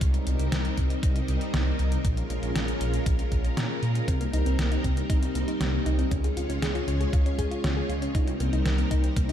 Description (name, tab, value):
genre	synthwave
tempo	118 BPM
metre	4/4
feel	straight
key	C phrygian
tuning	A4 = 440 Hz
part	string machine, full ensemble	sustained chords	0.0-9.3 s	G3 to Db5	-31 LUFS	equal	ensemble chorus, sidechain pumping
part	dark detuned saw bass	bass	0.0-9.3 s	Bb1 to Bb2	-27 LUFS	equal	tube saturation
part	detuned 8-bit digital drum machine	drums	0.0-9.3 s	hi-hat, snare drum	-33 LUFS	equal	none
part	electronic kick drum	drums	0.0-9.3 s	none	-26 LUFS	equal	none
part	thumb-piano-like synth pluck	arpeggios	4.1-9.3 s	Bb3 to Ab4	-32 LUFS	left 2 dB	chorus, tape echo
room	light reverb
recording	dark, warm production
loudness	-24 LUFS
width	side -10 dB against mid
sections	0.0-9.3 A section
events	none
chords	0.0 Cm7; 2.0 Bbm7; 4.1 Cm7; 6.1 Db; 8.1 Cm7